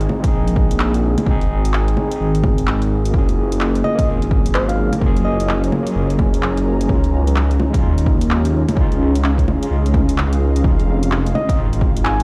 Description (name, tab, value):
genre	future garage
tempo	128 BPM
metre	4/4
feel	swing 62% on 16ths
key	unclear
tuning	A4 = 440 Hz
part	overdriven tine electric piano	accompaniment	0.0-12.2 s	Ab3 to Ab4	-26 LUFS	equal	medium tremolo, sidechain pumping, low-pass filter, analog delay
part	swelling detuned saw bass	bass	0.0-12.2 s	F1 to Eb2	-20 LUFS	equal	sidechain pumping
part	deep house drum kit	drums	0.0-12.2 s	bongos, handclaps, hi-hat	-26 LUFS	equal	overdrive
part	electronic kick drum	drums	0.2-11.9 s	none	-20 LUFS	equal	overdrive
part	granular cloud pad	sustained chords	4.2-12.2 s	Gb3 to Bb5	-28 LUFS	equal	built-in reverb, sidechain pumping
part	soft struck synth lead	melody	3.8-5.6, 11.3-12.2 s	C5 to Ab5	-28 LUFS	equal	chorus, analog delay
room	little or no reverb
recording	played on a big sound system in a bare room, large studio reverb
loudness	-17 LUFS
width	mono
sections	0.0-12.2 A section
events	none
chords	0.0 Ab; 3.1 Gbmaj7; 6.9 Dbadd9; 10.6 Fm7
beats	0.33 0.80 | 1.27 1.74 2.21 2.67 | 3.14 3.61 4.08 4.55 | 5.02 5.49 5.96 6.42 | 6.89 7.36 7.83 8.30 | 8.77 9.24 9.71 10.17 | 10.64 11.11 11.58 12.05